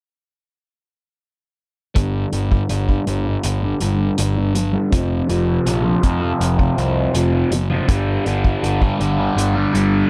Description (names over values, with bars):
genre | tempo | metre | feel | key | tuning
psychedelic rock | 81 BPM | 4/4 | straight | unclear | A4 = 440 Hz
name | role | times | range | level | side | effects
fuzz guitar | riff | 2.0-10.1 s | F2 to G3 | -22 LUFS | equal | distortion, phaser, low-pass filter
fuzz picked electric bass | bass | 2.0-10.0 s | F1 to F2 | -23 LUFS | equal | overdrive
vintage drum kit | drums | 2.0-9.9 s | hi-hat, kick drum | -23 LUFS | equal | none
room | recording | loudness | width
little or no reverb | none | -19 LUFS | mono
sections
2.0-10.1 A section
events
filter sweep on distorted electric guitar 2.0-10.1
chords
2.0 G5; 4.9 F5; 7.9 G5